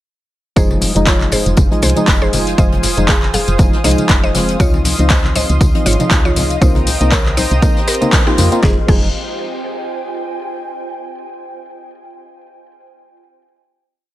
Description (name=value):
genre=deep house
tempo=119 BPM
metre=4/4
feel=swing 56% on 16ths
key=F minor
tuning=A4 = 439 Hz
part: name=mallet-like synth pluck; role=melody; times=0.6-9.1 s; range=Eb4 to F5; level=-23 LUFS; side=equal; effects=chorus, tape echo
part: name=warm analog pad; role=sustained chords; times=0.6-8.9 s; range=Ab4 to Eb6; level=-26 LUFS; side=right 2 dB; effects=chorus, sidechain pumping
part: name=percussive organ stab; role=stabs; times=0.6-9.1 s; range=C3 to F4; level=-19 LUFS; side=equal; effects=chorus, sidechain pumping, dub echo
part: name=woody FM bass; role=bass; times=0.6-9.1 s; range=F1 to F2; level=-17 LUFS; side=equal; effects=sidechain pumping
part: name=deep house drum kit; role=drums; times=0.6-9.0 s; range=crash cymbal, handclaps, hi-hat, snare drum, tambourine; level=-20 LUFS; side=left 1 dB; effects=overdrive
part: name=electronic kick drum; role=drums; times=0.6-9.0 s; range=none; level=-14 LUFS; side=equal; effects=overdrive
part: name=jazz brush drum kit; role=drums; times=0.6-8.6 s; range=hi-hat, snare drum, tambourine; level=-28 LUFS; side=left 2 dB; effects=none
part: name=ethereal airy pad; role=texture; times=1.3-10.6 s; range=C4 to C6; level=-27 LUFS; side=right 1 dB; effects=ensemble chorus, built-in reverb, sidechain pumping
part: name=congas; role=percussion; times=0.7-8.5 s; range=none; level=-24 LUFS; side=left 2 dB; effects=none
room=small room reverb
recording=none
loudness=-11 LUFS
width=side -15 dB against mid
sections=0.6-8.6 drop; 8.6-10.6 final chord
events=drop 0.6-8.6; band accent 8.1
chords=0.6 Fm7; 4.6 Dbmaj9; 6.6 Cm7; 8.6 Fm7